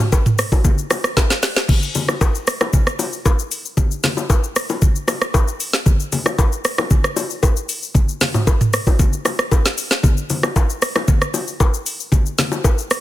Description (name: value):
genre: amapiano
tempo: 115 BPM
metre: 4/4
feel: straight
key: none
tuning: none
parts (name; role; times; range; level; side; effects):
- smooth R&B drum kit; drums; 0.0-13.0 s; crash cymbal, hi-hat, kick drum, rim click, shaker, snare drum, toms; -16 LUFS; equal; soft clipping on snare
- bongos and congas; percussion; 0.0-12.8 s; none; -23 LUFS; left 4 dB; none
room: little or no reverb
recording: dense, heavily limited modern master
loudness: -15 LUFS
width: side -14 dB against mid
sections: 0.0-13.0 A section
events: drum fill 1.2-1.7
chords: none